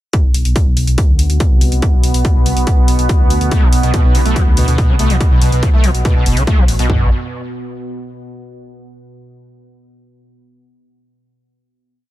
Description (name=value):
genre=driving peak-time techno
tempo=142 BPM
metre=4/4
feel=straight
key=B phrygian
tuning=A4 = 441 Hz
part: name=deep dark ambient pad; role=drone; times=0.5-6.9 s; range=B2 to B3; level=-23 LUFS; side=right 2 dB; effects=chorus, built-in reverb, sidechain pumping
part: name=electronic hi-hat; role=drums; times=0.1-6.9 s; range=none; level=-24 LUFS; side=left 1 dB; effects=overdrive
part: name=techno drum kit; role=drums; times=0.1-7.0 s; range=kick drum, toms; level=-12 LUFS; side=equal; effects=overdrive
part: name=dark detuned saw bass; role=bass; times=0.2-7.1 s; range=F#1 to D2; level=-15 LUFS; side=equal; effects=sidechain pumping
part: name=screaming distorted acid line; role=riff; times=3.5-7.1 s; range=B2 to A3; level=-19 LUFS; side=equal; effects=distortion, ensemble chorus, sidechain pumping, digital delay
room=digital ambience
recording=dense, heavily limited modern master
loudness=-11 LUFS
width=side -15 dB against mid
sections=0.1-6.9 groove; 6.9-8.6 final note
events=none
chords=0.1 Bm; 6.9 N.C.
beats=| 0.13 0.56 0.98 1.40 | 1.82 2.25 2.67 3.09 | 3.51 3.94 4.36 4.78 | 5.20 5.63 6.05 6.47 | 6.89